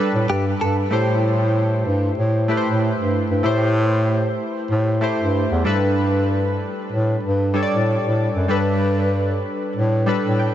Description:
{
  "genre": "afrobeats",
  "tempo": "95 BPM",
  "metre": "4/4",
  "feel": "swing 55% on 16ths",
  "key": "unclear",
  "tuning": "A4 = 440 Hz",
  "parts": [
    { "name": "warm analog keys", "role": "accompaniment", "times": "0.0-10.5 s", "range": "G3 to G5", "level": "-22 LUFS", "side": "equal", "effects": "chorus, tremolo" },
    { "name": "mellow bass clarinet", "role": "bass", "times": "0.1-10.5 s", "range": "E2 to A2", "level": "-19 LUFS", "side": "equal", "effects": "none" },
    { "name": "direct-recorded clean electric guitar", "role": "melody", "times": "0.3-0.8 s", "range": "G4 to A4", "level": "-29 LUFS", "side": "right 1 dB", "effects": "wide subtle chorus, analog delay" }
  ],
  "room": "moderate huge ambient reverb, RT60 6.2 s",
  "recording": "dreamy mix soaked in reverb, nothing above 8.0 kHz",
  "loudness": "-17 LUFS",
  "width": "side -11 dB against mid",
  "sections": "0.0-10.5 A section",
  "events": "none",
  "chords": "0.0 Gadd9; 0.9 Am7; 5.7 Gadd9",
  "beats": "0.29 | 0.92 1.55 2.18 2.81 | 3.44 4.08 4.71 5.34 | 5.97 6.60 7.23 7.87 | 8.50 9.13 9.76 10.39"
}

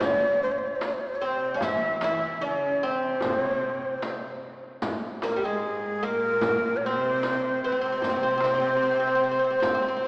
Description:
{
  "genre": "Persian modal ensemble",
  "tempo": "75 BPM",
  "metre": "4/4",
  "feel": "straight",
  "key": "C dastgah homayun",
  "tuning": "A4 = 438 Hz",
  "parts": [
    { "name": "breathy reedy ney", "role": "melody", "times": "0.0-10.1 s", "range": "Ab4 to F5", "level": "-25 LUFS", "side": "equal", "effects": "none" },
    { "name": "oud", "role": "second line", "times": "0.0-10.1 s", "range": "G3 to E4", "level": "-32 LUFS", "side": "equal", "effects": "none" },
    { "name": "warm chamber cello section", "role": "second line", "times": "0.0-10.1 s", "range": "Ab2 to E3", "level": "-35 LUFS", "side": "equal", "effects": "none" },
    { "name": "frame drum", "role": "percussion", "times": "0.0-9.8 s", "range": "none", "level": "-35 LUFS", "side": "equal", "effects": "none" },
    { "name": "riq", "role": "percussion", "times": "0.0-10.1 s", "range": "none", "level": "-41 LUFS", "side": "equal", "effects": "none" },
    { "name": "tombak", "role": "percussion", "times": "0.0-10.1 s", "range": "none", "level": "-40 LUFS", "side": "equal", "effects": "none" }
  ],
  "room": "wet church reverb, RT60 3.2 s",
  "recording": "recorded in a church or concert hall, small speaker sound",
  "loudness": "-23 LUFS",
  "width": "side -29 dB against mid",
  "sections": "0.0-10.1 A section",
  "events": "none",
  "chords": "none",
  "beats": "0.01 0.81 | 1.62 2.42 3.22 4.03 | 4.83 5.63 6.43 7.24 | 8.04 8.84 9.64"
}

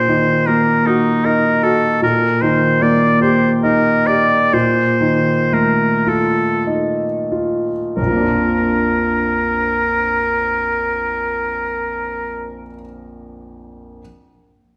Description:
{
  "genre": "classical, romantic duo for oboe and grand piano",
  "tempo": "29-52 BPM (dotted quarters)",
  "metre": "6/8",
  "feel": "rubato",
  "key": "Bb major",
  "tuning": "A4 = 440 Hz",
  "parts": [
    { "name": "bright oboe", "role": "melody", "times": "0.0-12.5 s", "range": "Eb4 to D5", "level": "-19 LUFS", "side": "equal", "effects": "none" },
    { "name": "clear grand piano", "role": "accompaniment", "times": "0.0-14.0 s", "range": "Bb1 to G4", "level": "-20 LUFS", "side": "equal", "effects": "none" }
  ],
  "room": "wet recital hall reverb, RT60 1.7 s",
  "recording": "heard from further back in the room",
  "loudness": "-16 LUFS",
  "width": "mono",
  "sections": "0.0-8.0 A section; 8.0-11.8 B section",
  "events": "slowing down 0.9-8.0",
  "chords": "0.0 Ebm/Bb; 2.0 Eb/Bb; 4.5 F7/Bb; 8.0 Bb",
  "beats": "0.86 | 2.02 3.21 | 4.53 6.08 | 7.97 9.85"
}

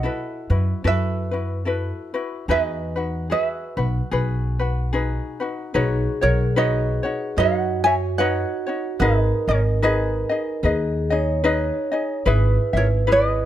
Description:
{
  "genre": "Hawaiian",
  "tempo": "74 BPM",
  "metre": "4/4",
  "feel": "swing 58% on 8ths",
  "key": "E major, B major from 5.7 s",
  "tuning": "A4 = 441 Hz",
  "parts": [
    { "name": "tenor ukulele", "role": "melody", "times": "0.0-13.5 s", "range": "G#4 to G#5", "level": "-23 LUFS", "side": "right 3 dB", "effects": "none" },
    { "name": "ukulele", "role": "accompaniment", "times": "0.0-13.5 s", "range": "D#4 to E5", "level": "-25 LUFS", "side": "left 4 dB", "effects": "none" },
    { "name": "upright bass", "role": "bass", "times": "0.0-13.5 s", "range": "G#1 to F#2", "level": "-22 LUFS", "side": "equal", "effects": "none" },
    { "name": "vibraphone with soft mallets", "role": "second line", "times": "5.7-13.5 s", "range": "F#4 to C#5", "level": "-26 LUFS", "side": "right 3 dB", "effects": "none" }
  ],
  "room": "little or no reverb",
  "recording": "close, detailed microphones",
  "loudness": "-19 LUFS",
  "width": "side -12 dB against mid",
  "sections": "0.0-5.7 A section; 5.7-13.5 B section",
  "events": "none",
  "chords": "0.0 B7sus4; 2.5 Emaj9; 5.7 Badd9; 9.0 G#m; 12.3 E/G#",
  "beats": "0.02 0.84 1.66 | 2.48 3.29 4.11 4.93 | 5.74 6.56 7.38 8.19 | 9.01 9.82 10.64 11.45 | 12.27 13.08"
}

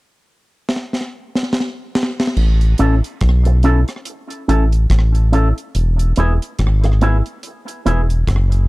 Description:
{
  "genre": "roots reggae",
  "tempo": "71 BPM",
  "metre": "4/4",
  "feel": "swing 58% on 16ths",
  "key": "A major",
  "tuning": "A4 = 440 Hz",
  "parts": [
    { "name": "deep reggae drum kit", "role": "drums", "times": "0.7-8.7 s", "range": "crash cymbal, hi-hat, kick drum, rim click, snare drum", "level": "-21 LUFS", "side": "equal", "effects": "slapback echo" },
    { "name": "round analog bass", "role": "bass", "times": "2.4-8.7 s", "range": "E1 to B1", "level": "-13 LUFS", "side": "equal", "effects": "none" },
    { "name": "electric guitar with an envelope filter", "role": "accompaniment", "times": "2.8-8.0 s", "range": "B3 to A4", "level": "-20 LUFS", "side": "right 1 dB", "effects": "tape echo" }
  ],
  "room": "small room ambience",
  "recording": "dry, close 1970s-style studio recording",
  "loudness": "-14 LUFS",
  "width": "side -21 dB against mid",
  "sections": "0.0-2.4 A section; 2.4-8.7 B section",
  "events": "drum fill 0.7-2.4",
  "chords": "0.0 N.C.; 2.4 A; 5.7 E",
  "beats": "0.67 1.52 | 2.36 3.21 4.05 4.90 | 5.74 6.59 7.43 8.28"
}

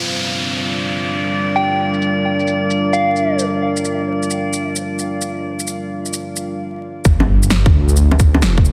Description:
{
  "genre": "future garage",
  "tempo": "131 BPM",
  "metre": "4/4",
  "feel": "swing 66% on 16ths",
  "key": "G minor",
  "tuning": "A4 = 435 Hz",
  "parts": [
    { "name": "dark analog pad", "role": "sustained chords", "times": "0.0-6.6 s", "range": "G3 to F5", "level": "-23 LUFS", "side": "equal", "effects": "chorus, sidechain pumping" },
    { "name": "downlifter and impact", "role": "sound effects", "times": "0.0-3.4, 7.2-8.7 s", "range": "none", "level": "-26 LUFS", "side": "equal", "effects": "none" },
    { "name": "drifting glass-harmonics texture", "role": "texture", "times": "0.4-6.6 s", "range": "D5", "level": "-27 LUFS", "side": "equal", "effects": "chorus, built-in reverb" },
    { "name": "electronic shaker, bongos and snare drum", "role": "drums", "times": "0.1-8.7 s", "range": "none", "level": "-22 LUFS", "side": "equal", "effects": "low-pass filter on perc, studio reverb, low-pass filter on snare" },
    { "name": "soft struck synth lead", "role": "melody", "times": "1.6-3.4 s", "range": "F5 to G5", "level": "-24 LUFS", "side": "equal", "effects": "chorus, dub echo" },
    { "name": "swelling detuned saw bass", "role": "bass", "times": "7.1-8.7 s", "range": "F1 to D2", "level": "-16 LUFS", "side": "equal", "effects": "sidechain pumping" },
    { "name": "electronic kick drum", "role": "drums", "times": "7.1-8.6 s", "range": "none", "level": "-14 LUFS", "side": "equal", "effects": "studio reverb" }
  ],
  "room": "light reverb, digital ambience",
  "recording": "dense, heavily limited modern master, vinyl crackle",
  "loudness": "-17 LUFS",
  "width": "mono",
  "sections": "0.0-7.1 A section; 7.1-8.7 B section",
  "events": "break 6.6-7.1; impact 7.1-8.7",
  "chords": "0.0 Gm7; 7.1 G5",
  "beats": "0.18 0.64 1.10 | 1.56 2.02 2.47 2.93 | 3.39 3.85 4.30 4.76 | 5.22 5.68 6.14 6.59 | 7.05 7.51 7.97 8.43"
}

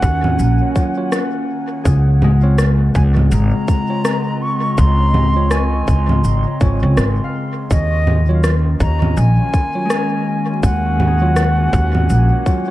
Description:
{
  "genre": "ambient dub",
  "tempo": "82 BPM",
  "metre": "4/4",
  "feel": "swing 59% on 16ths",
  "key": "Eb dorian",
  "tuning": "A4 = 441 Hz",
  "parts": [
    { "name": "mellow silver concert flute", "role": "melody", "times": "0.0-12.7 s", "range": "Eb5 to Db6", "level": "-23 LUFS", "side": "right 1 dB", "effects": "dub echo" },
    { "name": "warbly tape-like pad", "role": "sustained chords", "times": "0.0-12.7 s", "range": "Db3 to Eb5", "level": "-23 LUFS", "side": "left 1 dB", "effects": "chorus, built-in reverb" },
    { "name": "upright bass", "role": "bass", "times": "0.0-12.3 s", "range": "Ab1 to Eb2", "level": "-14 LUFS", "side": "equal", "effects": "none" },
    { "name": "electronic cabasa, congas and rim click", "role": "drums", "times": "0.0-12.6 s", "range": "none", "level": "-22 LUFS", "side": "equal", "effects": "overdrive, dub echo" },
    { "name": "electronic kick drum", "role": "drums", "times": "0.0-12.6 s", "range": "none", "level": "-16 LUFS", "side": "equal", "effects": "overdrive" },
    { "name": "tine electric piano", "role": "stabs", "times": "0.8-12.7 s", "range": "Gb3 to Db5", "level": "-28 LUFS", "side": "right 2 dB", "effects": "dub echo" },
    { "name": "Celtic harp", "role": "arpeggios", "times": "1.8-12.7 s", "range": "Ab3 to F5", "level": "-25 LUFS", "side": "left 4 dB", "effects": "dub echo" }
  ],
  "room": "light reverb, digital ambience",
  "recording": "dark, warm production, vinyl crackle",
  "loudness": "-13 LUFS",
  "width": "side -15 dB against mid",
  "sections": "0.0-12.7 A section",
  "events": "none",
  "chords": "0.0 Ebm9; 1.9 Dbmaj7; 7.7 Ebm9",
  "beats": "0.39 1.12 | 1.85 2.59 3.32 4.05 | 4.78 5.51 6.24 6.98 | 7.71 8.44 9.17 9.90 | 10.63 11.37 12.10"
}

